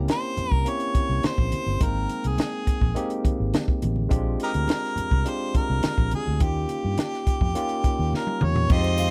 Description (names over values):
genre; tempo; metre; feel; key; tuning
lush 1970s-style soul; 104 BPM; 4/4; straight; unclear; A4 = 440 Hz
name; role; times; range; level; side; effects
barky tine electric piano; accompaniment; 0.0-9.1 s; G3 to G5; -32 LUFS; equal; none
vintage muted fingered electric bass; bass; 0.0-9.1 s; G1 to G2; -28 LUFS; equal; none
warm harmonica; melody; 0.1-9.1 s; Eb4 to Eb5; -31 LUFS; equal; none
compact cocktail drum kit; drums; 0.1-9.1 s; crash cymbal, hi-hat, kick drum, snare drum, toms; -26 LUFS; equal; none
congas; percussion; 0.1-9.1 s; none; -36 LUFS; equal; none
dark studio string section; second line; 8.7-9.1 s; C5 to C6; -34 LUFS; equal; none
triangle; percussion; 8.7-9.1 s; none; -45 LUFS; equal; none
large celesta; texture; 9.0-9.1 s; F5; -34 LUFS; equal; none
room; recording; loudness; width
small room reverb; dry, close 1970s-style studio recording; -24 LUFS; mono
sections
0.0-8.7 A section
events
drum fill 8.1-8.7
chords
0.0 C7b9; 1.8 Abmaj9; 4.1 Bb13; 6.4 Eb7